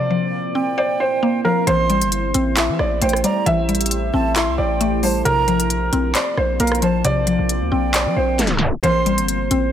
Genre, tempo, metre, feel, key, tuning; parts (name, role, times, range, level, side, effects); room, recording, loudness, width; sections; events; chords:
hip hop, trap; 134 BPM; 4/4; half-time; A phrygian; A4 = 444 Hz
felt-muted upright piano; melody; 0.0-9.7 s; Bb4 to E5; -22 LUFS; right 1 dB; low-pass filter, tape echo
mallet-like synth pluck; accompaniment; 0.0-9.7 s; C3 to C5; -22 LUFS; left 3 dB; chorus, low-pass filter
deep dark ambient pad; sustained chords; 0.0-9.7 s; A3 to C5; -27 LUFS; equal; chorus, built-in reverb
mellow hollow jazz flute; second line; 0.6-9.3 s; F5 to C6; -26 LUFS; right 6 dB; tape echo
hard-hitting 808-style bass; bass; 1.7-9.7 s; G1 to F3; -23 LUFS; right 1 dB
trap drum kit; drums; 1.7-9.6 s; handclaps, hi-hat, rim click, snare drum; -22 LUFS; equal
light reverb; tape stop; -16 LUFS; side -10 dB against mid
0.0-8.8 A section
drum fill 8.4-8.8; tape stop 8.4-8.8
0.0 Bbsus2; 1.7 Am7; 5.3 Bbsus2; 8.8 Am7